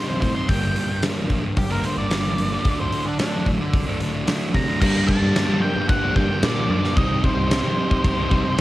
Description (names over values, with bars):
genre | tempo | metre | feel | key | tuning
quiet-loud alternative rock | 111 BPM | 4/4 | straight | G harmonic minor | A4 = 440 Hz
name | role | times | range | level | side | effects
octave-fuzz lead guitar | melody | 0.0-8.6 s | D4 to C6 | -27 LUFS | equal | distortion, plate reverb
overdriven semi-hollow guitar | riff | 0.0-8.6 s | G2 to Eb4 | -30 LUFS | left 6 dB | cassette tape
thick fuzz guitar | riff | 0.0-8.6 s | G2 to Eb4 | -25 LUFS | right 3 dB | distortion, cassette tape
fingered electric bass | bass | 0.0-8.6 s | G1 to G3 | -26 LUFS | equal | none
huge arena drum kit | drums | 0.2-8.6 s | crash cymbal, hi-hat, kick drum, snare drum | -23 LUFS | equal | cassette tape
tonewheel organ | sustained chords | 4.8-8.6 s | D4 to G5 | -34 LUFS | left 1 dB | none
fuzz guitar | riff | 4.8-8.6 s | G2 to Eb4 | -28 LUFS | left 1 dB | none
room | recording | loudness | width
light reverb | home recording on cassette | -18 LUFS | side -16 dB against mid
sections
0.0-4.8 A section; 4.8-8.6 B section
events
lead electric guitar solo 0.0-4.8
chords
0.5 Gm; 2.7 D; 4.8 Gm; 7.0 Cm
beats
| 0.49 1.03 1.57 2.11 | 2.65 3.19 3.73 4.27 | 4.81 5.35 5.89 6.43 | 6.97 7.51 8.05 8.58